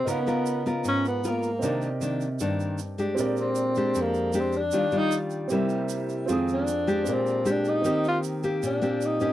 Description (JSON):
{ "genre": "bossa nova", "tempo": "154 BPM", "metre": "4/4", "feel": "straight", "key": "Eb major", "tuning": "A4 = 440 Hz", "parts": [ { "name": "breathy tenor saxophone", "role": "melody", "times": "0.0-9.3 s", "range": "Bb3 to F4", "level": "-26 LUFS", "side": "equal", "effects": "none" }, { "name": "nylon-string guitar", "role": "accompaniment", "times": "0.0-9.3 s", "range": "F2 to Bb4", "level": "-27 LUFS", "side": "left 1 dB", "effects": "none" }, { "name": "warm grand piano", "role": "accompaniment", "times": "0.0-9.3 s", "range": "C4 to Eb6", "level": "-31 LUFS", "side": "right 4 dB", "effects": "none" }, { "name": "egg shaker", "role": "percussion", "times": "0.1-9.3 s", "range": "none", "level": "-42 LUFS", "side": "right 12 dB", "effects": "none" } ], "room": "light reverb", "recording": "dry, close 1970s-style studio recording", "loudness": "-24 LUFS", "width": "side -13 dB against mid", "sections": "0.0-7.9 A section; 7.9-9.3 A section", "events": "tenor saxophone solo 0.0-9.3", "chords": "0.1 Db13; 1.6 Cm9; 3.2 Bb13; 4.7 Ebmaj9; 5.5 C7; 6.3 Fm7; 7.1 Bb13; 7.9 Eb6" }